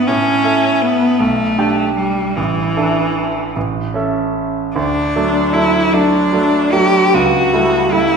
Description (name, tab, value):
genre	classical, romantic duo for cello and grand piano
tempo	51 BPM (dotted quarters)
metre	6/8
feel	uneven beats, rubato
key	D major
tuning	A4 = 440 Hz
part	bright cello	melody	0.0-8.2 s	E3 to G4	-15 LUFS	left 1 dB	none
part	bright concert grand piano	accompaniment	0.0-8.2 s	A1 to G5	-16 LUFS	right 3 dB	none
room	wet scoring stage reverb, RT60 1.7 s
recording	recorded in a church or concert hall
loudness	-13 LUFS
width	side -6 dB against mid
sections	0.0-4.8 A section; 4.8-8.2 B section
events	none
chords	0.1 A; 1.2 G/B; 2.4 Asus4; 3.6 A; 4.8 D; 7.1 A7/C#